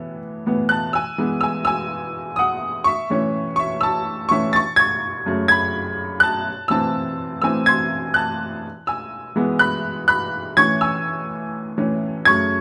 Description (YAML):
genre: pop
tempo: 125 BPM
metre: 4/4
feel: swing 56% on 16ths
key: unclear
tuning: A4 = 441 Hz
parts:
  - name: clear upright piano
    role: solo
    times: 0.0-12.6 s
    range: F#2 to A6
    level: -20 LUFS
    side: equal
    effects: none
room: moderate large studio reverb, RT60 1.0 s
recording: band playing live in one room, nothing above 10.4 kHz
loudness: -20 LUFS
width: mono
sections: 0.9-12.6 A section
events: upright piano solo 0.9-12.6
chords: 0.0 Asus2; 0.9 Eadd9; 2.9 A; 4.6 F#madd9; 6.5 Am; 8.6 Eadd9; 10.6 A